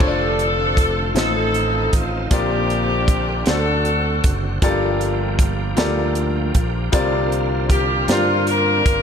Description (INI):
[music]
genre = slow gospel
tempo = 52 BPM (dotted quarters)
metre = 6/8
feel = straight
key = F major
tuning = A4 = 442 Hz
[part]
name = clear saxophone section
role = melody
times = 0.0-9.0 s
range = C4 to Bb4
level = -20 LUFS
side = left 1 dB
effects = none
[part]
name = bright upright piano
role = accompaniment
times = 0.0-9.0 s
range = G2 to Eb5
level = -23 LUFS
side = left 3 dB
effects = none
[part]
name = bright tonewheel organ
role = sustained chords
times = 0.0-9.0 s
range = D3 to G4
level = -28 LUFS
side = right 3 dB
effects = slow rotary speaker, chorus vibrato
[part]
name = modern bright fingered electric bass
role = bass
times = 0.0-9.0 s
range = F1 to G2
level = -23 LUFS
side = right 1 dB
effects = none
[part]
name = crisp fusion drum kit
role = drums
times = 0.0-9.0 s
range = crash cymbal, hi-hat, kick drum, snare drum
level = -20 LUFS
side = right 1 dB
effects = none
[sound]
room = light reverb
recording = none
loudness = -16 LUFS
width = side -7 dB against mid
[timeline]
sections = 0.0-9.0 A section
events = none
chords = 0.0 F6; 1.2 F7/A; 2.3 Bb69; 3.5 D7; 4.6 Gm9; 6.9 C9sus4